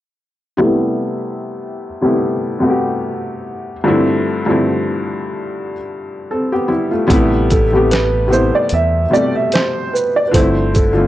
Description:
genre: lo-fi hip hop.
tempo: 74 BPM.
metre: 4/4.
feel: swing 55% on 16ths.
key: A minor.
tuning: A4 = 439 Hz.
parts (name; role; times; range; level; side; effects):
felt-muted upright piano; accompaniment; 0.6-11.1 s; G2 to A4; -16 LUFS; left 1 dB; low-pass filter.
deep dub fingered electric bass; bass; 7.1-11.1 s; G1 to E2; -18 LUFS; equal; tube saturation.
lo-fi sampler-style drum kit; drums; 7.1-11.0 s; hi-hat, kick drum, shaker, snare drum; -17 LUFS; right 1 dB; vintage 12-bit sampler grit.
dark upright piano; melody; 7.5-11.1 s; A4 to E5; -16 LUFS; right 2 dB; none.
room: light reverb.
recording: dry, gritty hardware recording.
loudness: -13 LUFS.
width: side -14 dB against mid.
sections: 0.6-7.1 A section; 7.1-11.1 B section.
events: filter sweep on felt piano 0.6-7.1.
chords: 0.6 Am9; 3.9 G13sus4; 7.1 Am9; 10.3 G13sus4.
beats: | 0.61 1.42 2.23 3.04 | 3.85 4.66 5.47 6.28 | 7.09 7.91 8.72 9.53 | 10.34.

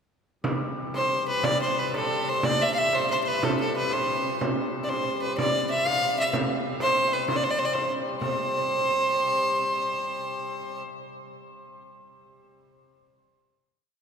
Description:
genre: medieval dance.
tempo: 120-133 BPM (dotted quarters).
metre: 6/8.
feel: straight.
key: C major.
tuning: A4 = 445 Hz.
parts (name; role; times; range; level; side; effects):
hand-pumped harmonium; drone; 0.4-10.8 s; C3 to G3; -36 LUFS; left 2 dB; none.
frame drum; percussion; 0.4-8.4 s; none; -30 LUFS; right 1 dB; none.
rich fiddle; melody; 1.0-10.8 s; A4 to F5; -25 LUFS; equal; none.
room: wet cathedral reverb, RT60 5.5 s.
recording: recorded in a church or concert hall.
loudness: -23 LUFS.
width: side -6 dB against mid.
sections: 0.4-8.2 A section; 8.2-10.0 final chord.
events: speeding up 0.4-10.0.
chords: none.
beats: | 0.44 0.94 | 1.44 1.94 | 2.44 2.93 | 3.42 3.92 | 4.40 4.89 | 5.37 5.86 | 6.33 6.81 | 7.28 7.75 | 8.22 8.68 | 9.14 9.59.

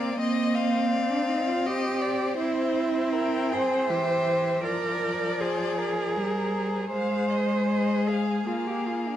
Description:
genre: classical, slow romantic movement for string quartet.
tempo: 80 BPM.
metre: 3/4.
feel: uneven beats, rubato.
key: unclear.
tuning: A4 = 440 Hz.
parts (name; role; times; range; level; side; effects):
rich violin; melody; 0.0-9.2 s; C5 to G5; -36 LUFS; left 8 dB; none.
clear violin; second line; 0.0-9.2 s; G4 to F5; -32 LUFS; left 3 dB; none.
rich viola; accompaniment; 0.0-9.2 s; E3 to C4; -29 LUFS; left 1 dB; none.
rich cello; bass; 0.0-9.2 s; Bb3 to C5; -27 LUFS; right 3 dB; none.
room: wet recital hall reverb, RT60 1.8 s.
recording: vinyl crackle.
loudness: -24 LUFS.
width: side -11 dB against mid.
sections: 0.0-9.2 A section.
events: none.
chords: 0.2 Cm7/Bb; 2.4 C; 4.6 Fm; 6.9 Fm/Ab; 8.5 Bb.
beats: | 0.19 0.91 1.66 | 2.38 3.12 3.89 | 4.63 5.40 6.15 | 6.91 7.68 8.46.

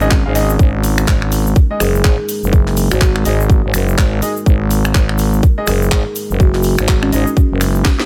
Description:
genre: bass house.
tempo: 124 BPM.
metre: 4/4.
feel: swing 60% on 16ths.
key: unclear.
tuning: A4 = 440 Hz.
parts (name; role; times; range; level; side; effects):
dark analog pad; sustained chords; 1.7-8.1 s; G#3 to D#5; -30 LUFS; equal; none.
warm concert grand piano; stabs; 0.0-7.3 s; G#3 to E#5; -24 LUFS; equal; sidechain pumping, dub echo.
growling FM bass; bass; 0.0-7.8 s; F#1 to G#1; -18 LUFS; equal; tube saturation, sidechain pumping.
egg shaker; percussion; 0.0-8.0 s; none; -30 LUFS; equal; none.
electronic kick drum; drums; 0.1-8.0 s; none; -14 LUFS; equal; none.
garage drum kit; drums; 0.1-8.1 s; finger snaps, handclaps, hi-hat, snare drum; -24 LUFS; equal; none.
buzzing kalimba; melody; 1.8-7.4 s; C#4 to G#4; -25 LUFS; equal; dub echo.
room: little or no reverb.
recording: none.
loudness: -14 LUFS.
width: mono.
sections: 0.0-8.1 A section.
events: drum fill 7.9.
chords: 0.0 G#5.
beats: 0.11 | 0.59 1.08 1.56 2.04 | 2.53 3.01 3.50 3.98 | 4.46 4.95 5.43 5.92 | 6.40 6.88 7.37 7.85.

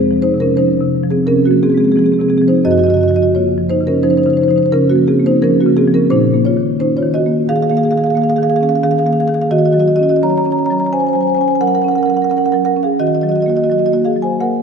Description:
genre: classical, contemporary piece for solo marimba.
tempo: 87 BPM.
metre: 5/4.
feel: rubato.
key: unclear.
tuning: A4 = 439 Hz.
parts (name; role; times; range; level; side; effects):
marimba with soft mallets; solo; 0.0-14.6 s; F2 to Bb5; -11 LUFS; equal; none.
room: wet concert hall reverb, RT60 2.5 s.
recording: none.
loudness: -11 LUFS.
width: side -6 dB against mid.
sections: 0.0-14.6 A section.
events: none.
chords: 0.0 Fm7; 2.6 Gbmaj7; 6.1 Bbm7; 9.5 Ebm7; 13.0 Gb69/Eb.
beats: 0.57 1.26 1.95 | 2.64 3.33 4.02 4.71 5.41 | 6.10 6.78 7.47 8.14 8.82 | 9.51 10.22 10.92 11.61 12.30 | 12.99 13.69 14.40.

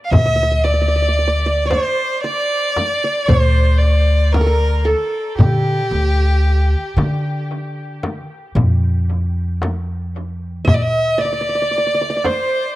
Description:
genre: Arabic maqam ensemble.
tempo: 114 BPM (eighths).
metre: 10/8.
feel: straight.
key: D maqam bayati.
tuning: A4 = 440 Hz.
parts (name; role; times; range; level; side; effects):
clear violin; melody; 0.0-12.8 s; G4 to F5; -19 LUFS; equal; dub echo.
qanun; second line; 0.1-12.8 s; G4 to E5-50c; -23 LUFS; right 2 dB; none.
upright bass; bass; 0.1-12.3 s; D2 to D3; -16 LUFS; equal; none.
darbuka; percussion; 0.1-12.5 s; none; -21 LUFS; left 1 dB; none.
frame drum; percussion; 0.1-12.5 s; none; -19 LUFS; left 1 dB; dub echo.
room: light reverb, small room ambience.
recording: echo-heavy mix.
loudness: -15 LUFS.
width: side -16 dB against mid.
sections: 0.1-12.8 A section.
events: none.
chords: none.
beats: | 0.12 0.65 1.17 1.70 2.23 2.75 3.28 3.81 4.34 4.86 | 5.39 5.92 6.45 6.97 7.50 8.03 8.55 9.08 9.61 10.13 | 10.66 11.19 11.71 12.24.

